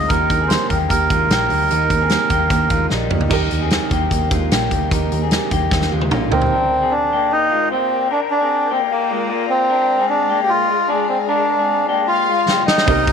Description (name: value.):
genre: jangly indie pop.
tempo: 150 BPM.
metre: 4/4.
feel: straight.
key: Bb mixolydian.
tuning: A4 = 440 Hz.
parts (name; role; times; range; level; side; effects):
melodica; melody; 0.0-2.9, 6.3-13.1 s; Bb3 to Eb5; -17 LUFS; right 2 dB; none.
picked steel-string acoustic guitar; accompaniment; 0.0-6.5, 12.9-13.1 s; C3 to G4; -24 LUFS; right 14 dB; none.
electric guitar through a small old amp; arpeggios; 0.0-13.1 s; G3 to Bb4; -22 LUFS; left 14 dB; spring reverb, slapback echo.
vintage muted picked electric bass; bass; 0.0-6.5, 12.9-13.1 s; Bb1 to Eb2; -22 LUFS; equal; none.
big rock drum kit; drums; 0.1-6.5, 12.5-13.1 s; crash cymbal, hi-hat, kick drum, snare drum, toms; -20 LUFS; equal; none.
warm upright piano; accompaniment; 3.3-6.5, 12.9-13.1 s; C4 to Bb4; -27 LUFS; right 13 dB; none.
soft string machine; sustained chords; 6.5-13.1 s; Ab3 to C6; -27 LUFS; equal; ensemble chorus.
rich studio violin section; second line; 12.1-13.1 s; Eb5 to F5; -24 LUFS; equal; none.
room: light reverb.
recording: 1960s-style stereo with parts hard left and right.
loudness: -15 LUFS.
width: side -6 dB against mid.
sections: 0.0-3.3 A section; 3.3-6.5 B section; 6.5-13.1 C section.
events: drum fill 2.9-3.3, 5.7-6.5, 12.5-12.9.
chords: 0.1 Eb; 6.5 Bb7.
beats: | 0.10 0.50 0.91 1.31 | 1.71 2.11 2.51 2.91 | 3.31 3.72 4.12 4.52 | 4.92 5.32 5.72 6.12 | 6.52 6.92 7.32 7.71 | 8.11 8.51 8.91 9.30 | 9.70 10.10 10.50 10.89 | 11.29 11.69 12.09 12.48 | 12.88.